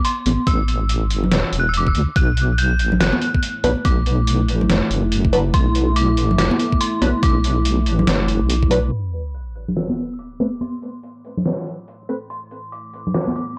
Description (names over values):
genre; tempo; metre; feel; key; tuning
deep dubstep; 142 BPM; 4/4; swing 62% on 16ths, half-time; A dorian; A4 = 437 Hz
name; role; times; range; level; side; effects
dark detuned synth bell; melody; 0.0-13.6 s; B5 to G6; -28 LUFS; equal; chorus, dub echo
trip hop sampler-style drum kit; drums; 0.0-13.5 s; hi-hat, snare drum; -26 LUFS; equal; none
deep soft wobble bass; bass; 0.3-8.9 s; E1 to D2; -21 LUFS; equal; chorus, tube saturation
congas; percussion; 0.3-13.3 s; none; -26 LUFS; equal; none
electronic kick drum; drums; 0.5-8.7 s; none; -21 LUFS; equal; none
dark analog pad; sustained chords; 3.3-13.6 s; A3 to E4; -28 LUFS; equal; chorus
filtered dub chord stab; stabs; 3.6-12.2 s; F#3 to B4; -25 LUFS; equal; phaser, lush chorus, dub echo
sub drop; sound effects; 8.9-10.6 s; none; -31 LUFS; equal; none
room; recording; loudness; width
digital ambience; dry, gritty hardware recording, cassette tape, low-pass filter; -19 LUFS; mono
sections
0.0-8.9 A section; 8.9-13.6 B section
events
impact 8.9-10.6; filter sweep on analog synth pad 8.9-13.6; filter sweep 8.9-13.6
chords
0.0 Am; 2.2 Bm; 8.9 A5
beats
0.05 | 0.47 0.89 1.31 1.74 | 2.16 2.58 3.00 3.43 | 3.85 4.27 4.70 5.12 | 5.54 5.96 6.38 6.81 | 7.23 7.65 8.07 8.50 | 8.92 9.34 9.77 10.19 | 10.61 11.03 11.46 11.88 | 12.30 12.72 13.14 13.57